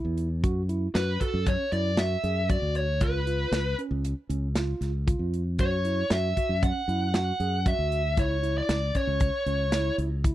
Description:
progressive instrumental, band music in an uneven meter; 116 BPM; 5/4; straight; A4 = 440 Hz
mellow tine electric piano; arpeggios; 0.0-10.3 s; C#4 to G#4; -34 LUFS; right 3 dB; medium stereo tremolo
modern bright fingered electric bass; bass; 0.0-10.3 s; C#2 to F#2; -28 LUFS; equal
modern studio drum kit; drums; 0.2-10.3 s; hi-hat, kick drum, snare drum; -27 LUFS; equal
bluesy overdriven lead guitar; melody; 0.9-9.9 s; A4 to F#5; -28 LUFS; equal; distortion
little or no reverb; dry, close 1970s-style studio recording; -24 LUFS; side -14 dB against mid
0.0-10.3 A section
0.4 F#5; 3.0 C#7; 5.6 F#5; 8.2 C#m

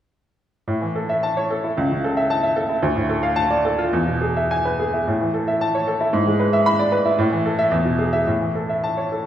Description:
classical, virtuoso piano study; 104-114 BPM; 2/4; rubato; A major; A4 = 440 Hz
bright baby grand piano; solo; 0.7-9.3 s; C#2 to B5; -18 LUFS; equal
wet recital hall reverb, RT60 1.7 s; recorded in a church or concert hall; -18 LUFS; side -10 dB against mid
0.7-9.3 A section
0.7 A; 1.8 A/C#; 2.8 Dm; 3.9 E; 5.1 A; 6.1 E7/G#; 7.2 A5; 7.7 E; 8.3 A

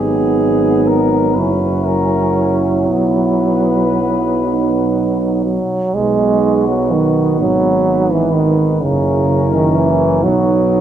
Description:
classical, hymn-like piece for brass band; 38-43 BPM (dotted quarters); 6/8; rubato; B major; A4 = 440 Hz
mellow flugelhorn; melody; 0.0-10.8 s; F#4 to B4; -22 LUFS; left 5 dB
dark French horn section; second line; 0.0-10.8 s; D#4 to E4; -19 LUFS; right 7 dB
bright trombone section; accompaniment; 0.0-10.8 s; B3 to C#4; -21 LUFS; left 4 dB
warm trombone; accompaniment; 0.0-10.8 s; C#3 to G#3; -16 LUFS; right 2 dB
mellow tuba; bass; 0.0-10.8 s; F#1 to B1; -20 LUFS; equal
wet recital hall reverb, RT60 1.5 s; minimal, uncompressed stereo recording; -12 LUFS; side -10 dB against mid
0.0-6.0 A section; 6.0-10.8 B section
0.0 G#m7; 1.4 F#7; 2.9 B; 8.8 F#7; 10.2 B

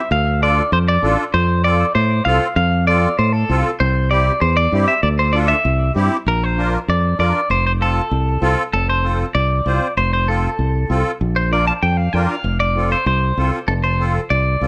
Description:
latin, cumbia; 194 BPM; 4/4; straight; F major; A4 = 439 Hz
clean electric guitar; melody; 0.0-14.7 s; A4 to A5; -21 LUFS; equal; spring reverb
fingered electric bass; bass; 0.1-14.7 s; F1 to A2; -20 LUFS; equal
musette accordion; accompaniment; 0.4-14.7 s; C4 to C5; -24 LUFS; equal
light reverb; close, detailed microphones; -17 LUFS; mono
0.0-6.3 A section; 6.3-14.7 B section
0.1 Dm; 1.3 F; 3.8 C; 5.0 Dm; 5.6 C; 6.3 Bb; 7.5 F; 11.2 Bb; 12.4 F

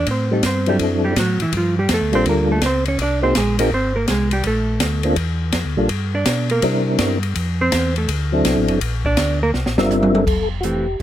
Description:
soul jazz organ trio; 165 BPM; 4/4; swing 65% on 8ths; F major; A4 = 436 Hz
hollow-body jazz guitar; accompaniment; 0.0-10.9 s; E3 to D5; -20 LUFS; right 2 dB
mellow tonewheel organ; bass; 0.0-11.0 s; F1 to C3; -22 LUFS; equal; slow rotary speaker
open jazz drum kit; drums; 0.1-11.0 s; crash cymbal, hi-hat, kick drum, ride cymbal, snare drum, toms; -23 LUFS; left 1 dB
percussive tonewheel organ; melody; 0.3-11.0 s; Gb3 to E5; -18 LUFS; equal; slow rotary speaker, chorus vibrato
little or no reverb; close, detailed microphones; -16 LUFS; side -12 dB against mid
0.0-10.3 A section
hollow-body jazz guitar solo 0.0-10.3; drum fill 9.5-10.3
0.1 Am7; 0.8 D7; 1.5 Gm7; 3.0 Abadd9; 4.4 Bbmaj7; 5.9 Gm; 6.6 C7; 7.4 Fmaj7; 8.1 D7; 8.8 Bb; 9.5 C7; 10.3 Fmaj7

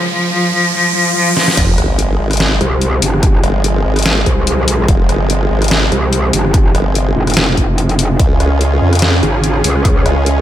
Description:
heavy wobble dubstep; 145 BPM; 4/4; swing 54% on 16ths, half-time; F minor; A4 = 440 Hz
dark cello; melody; 0.0-1.6 s; F3; -14 LUFS; left 1 dB; ping-pong delay
riser, swell and sub drop; sound effects; 0.0-3.2 s; -18 LUFS; right 1 dB
dubstep drum kit; drums; 1.4-10.4 s; crash cymbal, hi-hat, rim click, snare drum; -17 LUFS; left 1 dB
supersaw pad; sustained chords; 1.6-10.4 s; C3 to Ab4; -19 LUFS; right 1 dB; sidechain pumping
formant-sweep wobble bass; bass; 1.6-10.4 s; F1 to F2; -14 LUFS; equal; chorus, overdrive
electronic kick drum; drums; 1.6-9.9 s; -13 LUFS; equal
metallic wobble bass; bass; 2.6-10.0 s; F1 to Db2; -14 LUFS; equal; chorus, overdrive
digital ambience; -10 LUFS; side -12 dB against mid
0.0-1.6 A section; 1.6-10.4 B section
break 0.0-1.6; build-up 0.0-1.6; riser 0.0-1.6; swell 0.7-1.6; drum fill 1.4; drop 1.6-10.4; impact 1.6-3.2
0.0 N.C.; 1.6 Fm; 8.2 Db

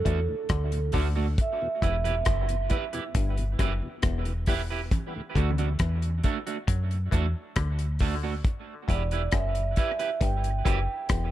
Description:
dub reggae; 68 BPM; 4/4; straight; E minor; A4 = 440 Hz
vibraphone with soft mallets; melody; 0.0-2.2, 8.9-11.3 s; A4 to G5; -31 LUFS; right 6 dB; tape echo
deep dub fingered electric bass; bass; 0.0-11.3 s; E1 to F#2; -27 LUFS; equal
electric guitar at the edge of break-up; accompaniment; 0.1-10.8 s; A3 to B4; -34 LUFS; right 6 dB; wide subtle chorus, tape echo
tonewheel organ; accompaniment; 0.1-5.2 s; D2 to E4; -40 LUFS; left 2 dB; overdrive, chorus vibrato, slow rotary speaker, tape echo
muted clav; riff; 0.1-11.3 s; E2 to F#3; -39 LUFS; left 8 dB; phaser, tape echo
damped 70s drum kit; drums; 0.1-11.3 s; hi-hat, kick drum, rim click; -27 LUFS; equal
congas; percussion; 4.9-5.1 s; -39 LUFS; right 4 dB; tape echo
small room reverb; echo-heavy mix; -25 LUFS; side -13 dB against mid
0.0-11.3 A section
break 0.0-4.9; part muted 4.9-11.3
0.0 D; 1.4 Em; 4.9 D; 8.4 Em

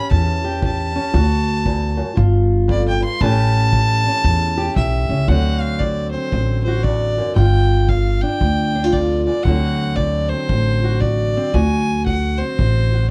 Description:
acoustic country blues, solo or duo; 115 BPM; 4/4; swing 62% on 8ths; D mixolydian; A4 = 441 Hz
clear fiddle; melody; 0.0-13.1 s; C5 to C6; -25 LUFS; equal
fingerpicked steel-string acoustic guitar; accompaniment; 0.0-13.1 s; D2 to G4; -25 LUFS; equal
upright bass; bass; 0.1-13.1 s; G1 to E2; -20 LUFS; equal
kick drum; drums; 0.1-12.7 s; -25 LUFS; equal
studio reverb; dry, close 1970s-style studio recording; -18 LUFS; mono
0.0-5.3 A section; 5.3-13.1 B section
fiddle solo 0.0-5.3
0.0 A7; 1.2 D; 2.2 G7(no3); 3.2 A7; 5.3 D7; 7.4 G5; 9.5 D7

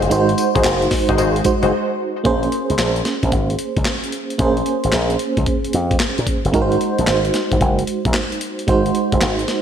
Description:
R&B, new jack swing; 112 BPM; 4/4; swing 66% on 16ths; Bb minor; A4 = 440 Hz
FM electric piano with tremolo; accompaniment; 0.0-9.6 s; Ab3 to C5; -19 LUFS; right 3 dB; slapback echo
funky polysynth comp; stabs; 0.0-1.7 s; Eb4 to C5; -21 LUFS; left 4 dB; chorus, digital delay, slapback echo
slap bass with an envelope filter; bass; 0.0-9.4 s; Gb1 to Bb2; -20 LUFS; left 1 dB
breakbeat sampler-style drum kit; drums; 0.0-9.6 s; handclaps, hi-hat, kick drum, snare drum, tambourine; -21 LUFS; left 1 dB
moderate lush hall reverb, RT60 1.8 s, digital ambience; big arena sound; -16 LUFS; side -8 dB against mid
0.0-2.3 A section; 2.3-9.6 B section
break 1.7-2.3
0.0 Ab7; 2.3 Bbm9; 6.5 Ab7

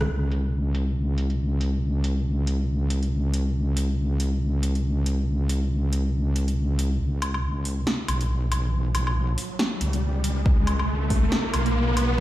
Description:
deep dubstep; 139 BPM; 4/4; swing 57% on 16ths, half-time; A4 = 435 Hz
wobble bass; bass; 0.0-12.2 s; B1 to C#2; -23 LUFS; equal; chorus
deep house drum kit; drums; 0.0-12.1 s; hi-hat, rim click, snare drum, woodblock; -30 LUFS; equal; overdrive, low-pass filter on hats, low-pass filter on perc, low-pass filter on snare
riser; sound effects; 7.9-12.2 s; -29 LUFS; equal
electronic kick drum; drums; 10.5-11.2 s; -21 LUFS; equal; overdrive
light reverb, digital ambience; played on a big sound system in a bare room, stone room reverb; -22 LUFS; side -15 dB against mid
0.1-7.0 A section; 7.0-12.2 B section
band accent 0.0; filter sweep on drum 0.1-7.0; build-up 7.0-12.2; riser 7.9-12.2

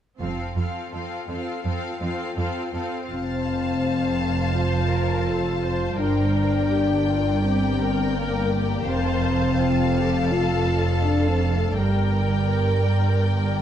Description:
cinematic; 83 BPM; 4/4; straight; F major; A4 = 440 Hz
warm symphonic violin section; second line; 0.2-13.6 s; A4 to F5; -31 LUFS; left 3 dB
warm symphonic viola section; accompaniment; 0.2-13.6 s; C4 to C5; -32 LUFS; right 1 dB
rich symphonic cello section; bass; 0.2-13.6 s; F2 to G2; -27 LUFS; right 2 dB
rich symphonic double bass section; bass; 0.2-13.6 s; F1 to G1; -25 LUFS; right 2 dB
rich symphonic violin section; melody; 3.1-13.6 s; G5 to A5; -32 LUFS; left 6 dB
dark French horn section; sustained chords; 3.1-13.6 s; G3 to F4; -25 LUFS; left 3 dB
moderate concert hall reverb, RT60 2.1 s; dark, warm production; -20 LUFS; side -10 dB against mid
0.2-3.1 A section; 3.1-13.6 B section
0.2 F; 6.0 Gm; 8.9 F; 11.8 Gm

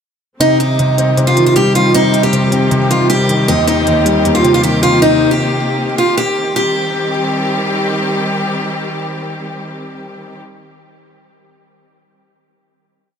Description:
hip hop, trap; 156 BPM; 4/4; half-time; C minor; A4 = 443 Hz
picked steel-string acoustic guitar; melody; 0.4-7.7 s; Eb4 to G4; -14 LUFS; right 1 dB; ping-pong delay
dark grand piano; accompaniment; 0.4-5.8 s; Eb2 to C4; -14 LUFS; left 1 dB
clear symphonic string section; sustained chords; 0.4-10.4 s; Eb3 to G4; -19 LUFS; equal
electronic hi-hat; drums; 0.4-4.9 s; -23 LUFS; right 1 dB
light reverb, small room ambience; -11 LUFS; side -7 dB against mid
0.4-6.6 breakdown; 6.6-9.6 final chord
0.4 Cm; 3.5 Eb6; 6.6 Cm

